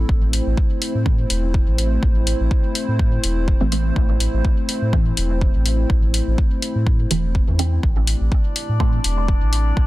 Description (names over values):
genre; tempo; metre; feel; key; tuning
dub techno; 124 BPM; 4/4; straight; A minor; A4 = 440 Hz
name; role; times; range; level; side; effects
dark analog pad; sustained chords; 0.0-9.9 s; A3 to C5; -27 LUFS; left 1 dB; chorus, sidechain pumping
filtered dub chord stab; stabs; 0.0-9.0 s; E3 to C4; -28 LUFS; right 2 dB; phaser, sidechain pumping, dub echo
warm sub bass; bass; 0.0-9.9 s; E1 to A2; -20 LUFS; equal; sidechain pumping
electronic kick drum; drums; 0.1-9.9 s; none; -18 LUFS; equal; none
electronic hi-hat; drums; 0.3-9.6 s; none; -24 LUFS; left 2 dB; overdrive
drifting glass-harmonics texture; texture; 8.2-9.9 s; D4 to D5; -28 LUFS; left 4 dB; chorus, built-in reverb, sidechain pumping
room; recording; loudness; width
little or no reverb; dense, heavily limited modern master; -16 LUFS; side -17 dB against mid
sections
0.0-9.9 A section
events
filter sweep on synth stab 0.0-9.9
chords
0.0 Am